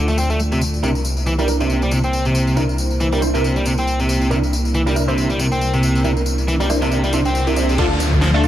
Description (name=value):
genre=breakbeat, breaks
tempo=138 BPM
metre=4/4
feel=swing 56% on 16ths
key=unclear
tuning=A4 = 440 Hz
part: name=dark analog pad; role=sustained chords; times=0.0-8.5 s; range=A3 to D5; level=-26 LUFS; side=right 1 dB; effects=chorus, vintage 12-bit sampler grit, sidechain pumping
part: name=biting overdriven guitar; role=riff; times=0.0-8.4 s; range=C3 to C4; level=-20 LUFS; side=equal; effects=vintage 12-bit sampler grit, low-pass filter, dub echo
part: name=phased detuned saw bass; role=bass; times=0.0-8.5 s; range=C2 to D2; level=-20 LUFS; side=equal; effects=phaser, tube saturation
part: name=electronic tambourine and handclaps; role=drums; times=0.1-8.5 s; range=none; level=-29 LUFS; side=left 3 dB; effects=studio ambience
part: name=orchestra-hit-like synth stab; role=stabs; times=0.8-8.5 s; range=D4 to C5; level=-23 LUFS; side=right 2 dB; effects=built-in reverb, phaser, dub echo
part: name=riser and downlifter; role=sound effects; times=5.6-8.5 s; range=none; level=-29 LUFS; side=equal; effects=none
part: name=breakbeat sampler-style drum kit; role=drums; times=7.8-8.5 s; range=crash cymbal, kick drum, ride cymbal, snare drum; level=-22 LUFS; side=equal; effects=studio ambience
room=light reverb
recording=vinyl crackle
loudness=-16 LUFS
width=side -12 dB against mid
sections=0.0-7.8 A section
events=none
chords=0.0 Dm; 0.8 C7; 7.8 Dm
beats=0.40 | 0.83 1.26 1.70 2.13 | 2.57 3.00 3.44 3.87 | 4.31 4.74 5.18 5.61 | 6.05 6.48 6.92 7.35 | 7.79 8.22